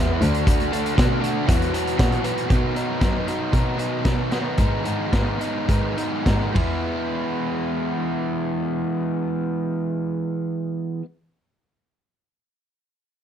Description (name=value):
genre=indie rock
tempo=100-118 BPM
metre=4/4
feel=straight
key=E major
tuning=A4 = 441 Hz
part: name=biting overdriven guitar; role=riff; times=0.0-11.1 s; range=G#2 to F#4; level=-23 LUFS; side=equal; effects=none
part: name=dark cello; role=bass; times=0.0-11.0 s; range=D2 to B2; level=-26 LUFS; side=equal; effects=none
part: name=vintage drum kit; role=drums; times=0.2-6.7 s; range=hi-hat, kick drum, ride cymbal, snare drum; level=-22 LUFS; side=equal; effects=none
room=light reverb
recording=dark, warm production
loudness=-20 LUFS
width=side -9 dB against mid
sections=0.0-2.5 A section; 2.5-6.9 B section; 6.9-11.7 C section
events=slowing down 2.5-6.9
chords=0.2 D; 1.5 Esus2; 2.5 B; 4.6 G#m; 6.6 E